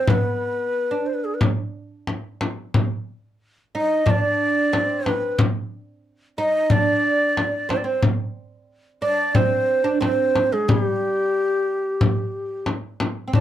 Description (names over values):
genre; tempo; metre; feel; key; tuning
Arabic maqam ensemble; 91 BPM; 4/4; straight; G maqam hijaz; A4 = 439 Hz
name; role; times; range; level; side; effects
breathy reedy ney; melody; 0.0-13.4 s; G4 to Eb5; -21 LUFS; equal; none
oud; second line; 0.0-13.4 s; G3 to Eb4; -27 LUFS; right 3 dB; none
frame drum; percussion; 0.1-13.4 s; none; -21 LUFS; left 1 dB; none
room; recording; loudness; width
moderate small room reverb, RT60 0.5 s; dark, warm production; -19 LUFS; side -11 dB against mid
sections
0.0-13.3 A section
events
none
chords
none